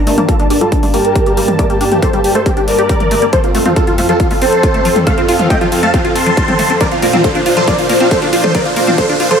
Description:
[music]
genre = uplifting trance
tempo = 138 BPM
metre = 4/4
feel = straight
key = G minor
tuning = A4 = 440 Hz
[part]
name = big supersaw lead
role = melody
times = 0.0-9.4 s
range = D4 to C6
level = -14 LUFS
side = equal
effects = phaser, sidechain pumping, low-pass filter, tape echo
[part]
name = supersaw stab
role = second line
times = 0.0-9.4 s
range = D4 to C6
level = -20 LUFS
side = equal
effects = analog chorus, sidechain pumping, low-pass filter, tape echo
[part]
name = lush unison pad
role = sustained chords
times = 0.0-9.4 s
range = F2 to A5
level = -18 LUFS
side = equal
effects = chorus, sidechain pumping
[part]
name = riser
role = sound effects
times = 0.0-9.4 s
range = none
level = -25 LUFS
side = right 2 dB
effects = none
[part]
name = liquid acid bass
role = arpeggios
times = 0.1-9.3 s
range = F3 to G4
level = -20 LUFS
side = left 2 dB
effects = chorus, sidechain pumping, tape echo
[part]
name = big-room dance drum kit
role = drums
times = 0.1-9.4 s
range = hi-hat, toms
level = -20 LUFS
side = left 1 dB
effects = sidechain pumping on hats, sidechain pumping on toms
[part]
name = electronic kick drum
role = drums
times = 0.3-9.1 s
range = none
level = -15 LUFS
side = equal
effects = none
[sound]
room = moderate plate reverb, RT60 1.2 s, digital ambience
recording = dreamy mix soaked in reverb, high-pass filter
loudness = -10 LUFS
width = side -7 dB against mid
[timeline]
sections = 0.0-9.4 A section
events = build-up 0.0-9.4; riser 0.0-9.4; filter sweep on supersaw synth 0.0-9.4; filter sweep on acid bass 0.0-9.4; filter sweep 0.0-9.4; drum fill 6.8-9.4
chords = 0.0 Gmadd9; 3.3 F; 6.8 Bbadd9

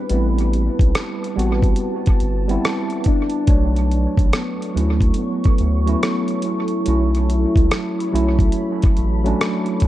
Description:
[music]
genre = lo-fi hip hop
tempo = 71 BPM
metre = 4/4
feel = swing 64% on 16ths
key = B minor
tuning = A4 = 441 Hz
[part]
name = warm velvety synth lead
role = melody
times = 0.0-9.8 s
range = A3 to E4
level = -26 LUFS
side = left 2 dB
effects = chorus, low-pass filter, dub echo
[part]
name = tine electric piano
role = accompaniment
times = 0.0-9.9 s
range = F#3 to C#5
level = -22 LUFS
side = right 1 dB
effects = overdrive, fast stereo tremolo, cassette tape, low-pass filter, dub echo
[part]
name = deep dark ambient pad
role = sustained chords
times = 0.0-9.9 s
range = G3 to C#6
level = -30 LUFS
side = right 1 dB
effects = chorus, built-in reverb, phaser, low-pass filter
[part]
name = round analog bass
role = bass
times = 0.1-9.3 s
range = G1 to D2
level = -19 LUFS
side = equal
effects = none
[part]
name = dusty soul sampler-style drum kit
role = drums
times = 0.1-9.9 s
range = hi-hat, kick drum, rim click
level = -18 LUFS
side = equal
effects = vintage 12-bit sampler grit
[sound]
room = little or no reverb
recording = echo-heavy mix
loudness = -16 LUFS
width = side -14 dB against mid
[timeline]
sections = 0.0-9.9 A section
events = none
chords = 0.0 Am9; 3.5 Bm9

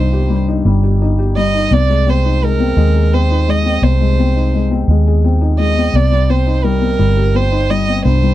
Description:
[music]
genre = six-eight pop ballad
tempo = 57 BPM (dotted quarters)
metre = 6/8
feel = straight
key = C minor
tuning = A4 = 438 Hz
[part]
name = dark violin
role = melody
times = 0.0-8.3 s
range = Bb4 to Eb5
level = -19 LUFS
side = right 5 dB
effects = none
[part]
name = felt-muted upright piano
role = accompaniment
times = 0.0-8.3 s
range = G2 to Ab4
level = -17 LUFS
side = left 5 dB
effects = none
[part]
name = vintage muted fingered electric bass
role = bass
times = 0.0-8.3 s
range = G1 to Eb2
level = -13 LUFS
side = right 1 dB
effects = none
[sound]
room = little or no reverb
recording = dry, close 1970s-style studio recording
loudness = -11 LUFS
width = side -14 dB against mid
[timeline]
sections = 0.0-8.3 A section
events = none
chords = 0.0 Cm; 1.7 Ab/C; 5.9 Cm

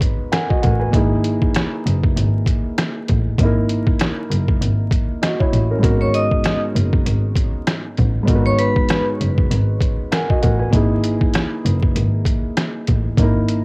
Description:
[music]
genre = hip hop, boom-bap hip-hop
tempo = 98 BPM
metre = 4/4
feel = swing 59% on 16ths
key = unclear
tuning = A4 = 438 Hz
[part]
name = dark concert grand piano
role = accompaniment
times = 0.0-13.6 s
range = G#2 to G#5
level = -22 LUFS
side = equal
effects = cassette tape
[part]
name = trip hop sampler-style drum kit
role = drums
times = 0.0-13.6 s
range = hi-hat, kick drum, rim click, snare drum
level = -18 LUFS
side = equal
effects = cassette tape
[part]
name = rich double bass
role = bass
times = 0.6-13.6 s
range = F#1 to A1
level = -19 LUFS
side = equal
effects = none
[part]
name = vibraphone with hard mallets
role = melody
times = 6.0-9.0 s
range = B4 to D#6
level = -22 LUFS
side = equal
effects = cassette tape, analog delay
[sound]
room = small room ambience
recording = home recording on cassette, vinyl crackle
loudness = -15 LUFS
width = side -31 dB against mid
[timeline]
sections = 0.0-13.6 A section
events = none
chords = 0.0 G#m9; 0.9 F#13; 5.8 G#m9; 10.7 F#13 (rootless)

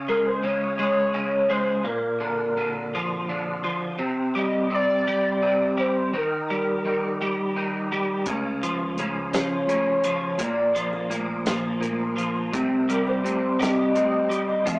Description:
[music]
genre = psychedelic rock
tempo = 56 BPM (dotted quarters)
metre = 6/8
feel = straight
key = unclear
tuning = A4 = 437 Hz
[part]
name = twelve-string electric guitar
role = riff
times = 0.0-14.8 s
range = Bb2 to Ab3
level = -25 LUFS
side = equal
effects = rotary speaker
[part]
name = hollow square lead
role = melody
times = 0.1-14.8 s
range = Bb4 to F5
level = -24 LUFS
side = equal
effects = chorus, phaser
[part]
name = fingered electric bass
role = bass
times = 8.3-14.8 s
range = Bb1 to Db3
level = -30 LUFS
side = equal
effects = none
[part]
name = damped 70s drum kit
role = drums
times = 8.3-14.8 s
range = hi-hat, kick drum, snare drum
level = -30 LUFS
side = equal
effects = none
[part]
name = congas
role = percussion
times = 8.3-14.8 s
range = none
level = -36 LUFS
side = equal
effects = none
[sound]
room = wet small room reverb, RT60 0.5 s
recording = rough rehearsal-room recording, warm saturation, small speaker sound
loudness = -22 LUFS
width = side -24 dB against mid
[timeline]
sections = 0.0-14.8 A section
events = none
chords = 0.0 Db5; 1.9 Bb; 4.0 C5; 6.1 Eb; 8.3 Db; 10.4 Bb; 12.5 Cm

